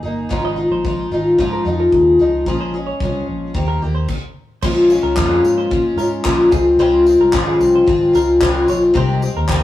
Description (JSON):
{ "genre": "acoustic pop", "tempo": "111 BPM", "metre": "4/4", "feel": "straight", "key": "unclear", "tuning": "A4 = 441 Hz", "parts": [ { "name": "picked twelve-string acoustic guitar", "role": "accompaniment", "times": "0.0-9.6 s", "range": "Ab2 to Ab4", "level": "-14 LUFS", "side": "left 2 dB", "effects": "none" }, { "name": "vintage muted fingered electric bass", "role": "bass", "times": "0.0-9.6 s", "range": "G1 to Bb2", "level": "-23 LUFS", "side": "equal", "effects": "none" }, { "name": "modern studio drum kit", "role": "drums", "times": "0.3-9.6 s", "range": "crash cymbal, handclaps, kick drum, tambourine", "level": "-22 LUFS", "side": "left 1 dB", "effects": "none" }, { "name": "direct-recorded clean electric guitar", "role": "arpeggios", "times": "0.4-9.5 s", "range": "Ab4 to Eb5", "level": "-28 LUFS", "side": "right 2 dB", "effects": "none" } ], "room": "light reverb", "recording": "rough rehearsal-room recording, small room ambience", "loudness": "-13 LUFS", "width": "side -14 dB against mid", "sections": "0.0-4.6 A section; 4.6-9.6 B section", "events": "stop 4.1-4.6", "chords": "0.3 Dbadd9/Ab; 2.5 Bbm7; 3.5 Eb6; 4.6 Bbm7; 6.5 Dbmaj7; 9.0 Abmaj7/C" }